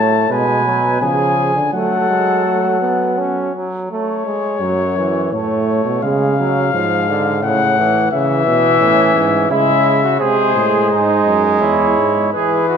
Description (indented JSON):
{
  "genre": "classical, imitative canzona for brass ensemble",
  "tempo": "85 BPM",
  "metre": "3/4",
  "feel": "straight",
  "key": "F# minor",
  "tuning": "A4 = 440 Hz",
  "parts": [
    { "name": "dark trumpet", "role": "melody", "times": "0.0-12.8 s", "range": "B4 to A5", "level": "-18 LUFS", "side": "left 8 dB", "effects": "none" },
    { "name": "warm flugelhorn", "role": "second line", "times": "0.0-3.5, 8.8-12.8 s", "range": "C#4 to C#5", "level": "-19 LUFS", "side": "right 6 dB", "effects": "none" },
    { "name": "clear trombone", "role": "accompaniment", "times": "0.0-12.8 s", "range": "C#3 to C#4", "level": "-18 LUFS", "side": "right 3 dB", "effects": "none" },
    { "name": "warm bass trombone", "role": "bass", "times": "0.0-12.3 s", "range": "E2 to F#3", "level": "-19 LUFS", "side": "right 2 dB", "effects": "none" }
  ],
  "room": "wet recital hall reverb, RT60 1.8 s",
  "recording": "none",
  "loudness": "-13 LUFS",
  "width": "side -7 dB against mid",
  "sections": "0.0-3.9 A section; 3.9-12.3 B section",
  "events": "none",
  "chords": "0.3 G#m7/B; 1.0 C#; 1.7 F#m; 5.3 Aadd9; 6.0 C#; 7.4 F#m/A; 8.1 C#m; 10.2 G#; 11.6 C#m/E",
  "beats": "0.30 1.01 | 1.73 2.46 3.17 | 3.90 4.61 5.32 | 6.03 6.73 7.43 | 8.12 8.82 9.51 | 10.21 10.91 11.61 | 12.33"
}